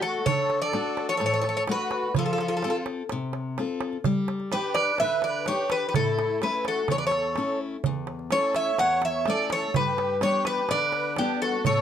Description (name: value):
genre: greek folk, Greek bouzouki band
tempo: 126 BPM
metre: 4/4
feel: straight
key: D major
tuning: A4 = 440 Hz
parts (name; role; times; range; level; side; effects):
- Greek bouzouki; melody; 0.0-11.8 s; G4 to F#5; -25 LUFS; equal; none
- musette accordion; second line; 0.0-11.8 s; D4 to C#5; -32 LUFS; right 2 dB; none
- picked steel-string acoustic guitar; accompaniment; 0.0-11.8 s; E2 to B4; -31 LUFS; left 4 dB; none
- darbuka; percussion; 0.0-11.8 s; none; -30 LUFS; right 7 dB; none
room: moderate studio ambience, RT60 0.5 s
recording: none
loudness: -23 LUFS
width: side -9 dB against mid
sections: 0.3-11.8 A section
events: none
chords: 0.3 D; 2.2 F; 4.0 G; 5.9 A; 9.7 G